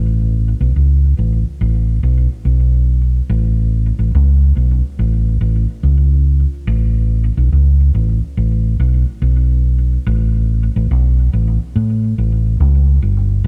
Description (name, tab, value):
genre	reggae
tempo	71 BPM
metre	4/4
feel	swing 63% on 16ths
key	A mixolydian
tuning	A4 = 440 Hz
part	hollow-body short-scale fingered electric bass	solo	0.0-13.5 s	G1 to A2	-15 LUFS	equal	tape echo
room	little or no reverb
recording	none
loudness	-15 LUFS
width	mono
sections	0.0-13.4 A section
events	none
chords	none